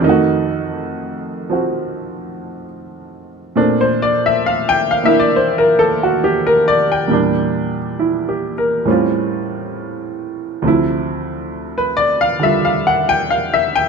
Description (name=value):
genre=solo jazz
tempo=68 BPM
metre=4/4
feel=swing 66% on 8ths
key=unclear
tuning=A4 = 441 Hz
part: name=clear baby grand piano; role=solo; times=0.0-13.9 s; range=D2 to G5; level=-14 LUFS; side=equal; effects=none
room=moderate studio reverb, RT60 0.9 s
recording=dark, warm production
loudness=-14 LUFS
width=side -5 dB against mid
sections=0.0-13.9 A section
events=grand piano solo 0.0-13.9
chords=0.0 F7b9; 3.6 Bbmaj9; 7.1 Em7b5; 8.9 A7alt; 10.6 Dm9